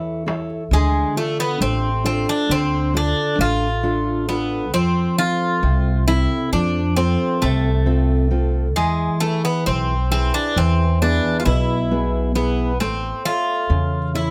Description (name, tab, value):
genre	greek folk, Greek bouzouki band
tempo	134 BPM (eighths)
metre	9/8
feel	straight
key	D dorian sharp4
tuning	A4 = 440 Hz
part	fingerpicked steel-string acoustic guitar	accompaniment	0.0-14.3 s	B2 to E5	-24 LUFS	equal	none
part	upright bass	bass	0.0-14.3 s	A1 to F2	-23 LUFS	equal	none
part	darbuka	percussion	0.3-0.6 s	none	-33 LUFS	equal	none
part	Greek bouzouki	melody	0.7-14.3 s	G#3 to F4	-24 LUFS	equal	none
room	light reverb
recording	close, detailed microphones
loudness	-20 LUFS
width	mono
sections	0.7-14.3 A section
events	none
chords	0.0 A; 0.7 Dm; 4.7 F; 8.8 E; 12.8 A